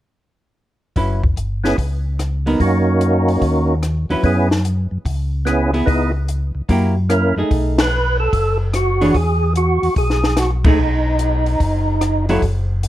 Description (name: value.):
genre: soul jazz organ trio.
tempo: 146 BPM.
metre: 4/4.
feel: swing 67% on 8ths.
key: B mixolydian from 7.5 s.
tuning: A4 = 440 Hz.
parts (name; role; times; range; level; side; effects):
archtop guitar, miked and amplified; accompaniment; 1.0-12.4 s; E3 to C#5; -19 LUFS; right 1 dB; none.
mellow tonewheel organ; bass; 1.0-12.9 s; F#1 to F#2; -18 LUFS; equal; slow rotary speaker.
compact cocktail drum kit; drums; 1.0-12.9 s; hi-hat, kick drum, ride cymbal, rim click, snare drum; -20 LUFS; equal; none.
percussive tonewheel organ; melody; 1.6-12.3 s; A#3 to B4; -19 LUFS; right 1 dB; slow rotary speaker, overdrive, chorus vibrato, plate reverb.
room: light reverb.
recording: none.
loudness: -15 LUFS.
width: side -14 dB against mid.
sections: 1.0-7.5 A section; 7.5-12.9 B section.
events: band accent 7.7, 10.6.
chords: 1.0 F#7sus4; 2.6 Bmaj7/F# (rootless); 4.2 F#7sus4; 5.9 C#m7; 6.7 F#7b9; 7.5 B13; 9.1 Eadd9; 10.8 B.